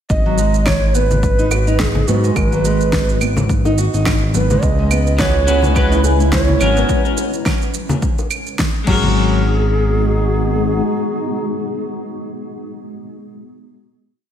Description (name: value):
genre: organic downtempo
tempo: 106 BPM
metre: 4/4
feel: swing 56% on 16ths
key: G# minor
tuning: A4 = 442 Hz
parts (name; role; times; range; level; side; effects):
- breathy mellow Native American-style cedar flute; melody; 0.1-11.9 s; F#4 to D#5; -22 LUFS; right 1 dB; analog delay
- smooth synth bass; bass; 0.1-10.8 s; G#1 to G#2; -17 LUFS; equal; sidechain pumping
- deep house drum kit; drums; 0.1-9.0 s; claves, crash cymbal, shaker, snare drum; -23 LUFS; right 1 dB; overdrive
- electronic kick drum; drums; 0.1-9.0 s; none; -20 LUFS; equal; overdrive
- nylon-string guitar; arpeggios; 0.3-9.4 s; F#3 to G#4; -21 LUFS; right 1 dB; ping-pong delay
- congas and bongos; percussion; 1.1-9.1 s; none; -24 LUFS; left 2 dB; none
- granular cloud pad; sustained chords; 5.4-11.9 s; G#3 to B4; -24 LUFS; equal; built-in reverb, sidechain pumping
- clean electric guitar; accompaniment; 5.2-11.9 s; G#3 to B4; -23 LUFS; left 4 dB; lush chorus, sidechain pumping, ping-pong delay
room: moderate lush hall reverb, RT60 1.6 s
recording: dreamy mix soaked in reverb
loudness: -13 LUFS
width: side -9 dB against mid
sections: 0.1-9.2 groove; 9.2-11.4 final hit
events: none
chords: 0.1 G#m; 4.6 C#m7; 6.9 G#9sus4; 8.9 G#m7